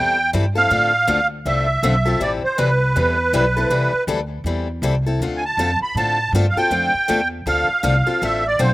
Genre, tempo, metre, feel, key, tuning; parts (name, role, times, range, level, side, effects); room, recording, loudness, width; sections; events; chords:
acoustic string swing (jazz manouche); 160 BPM; 4/4; swing 61% on 8ths; A4 = 442 Hz
musette accordion; melody; 0.0-8.7 s; B4 to B5; -18 LUFS; right 2 dB; slapback echo
picked steel-string acoustic guitar; accompaniment; 0.0-8.7 s; D3 to A4; -23 LUFS; left 4 dB; slapback echo
upright bass; bass; 0.0-8.7 s; A1 to A2; -21 LUFS; equal
little or no reverb; recorded outdoors, with no room sound; -16 LUFS; side -18 dB against mid
0.0-8.7 A section
0.0 Am7; 0.7 Dm7; 2.2 Am7; 5.2 Dm7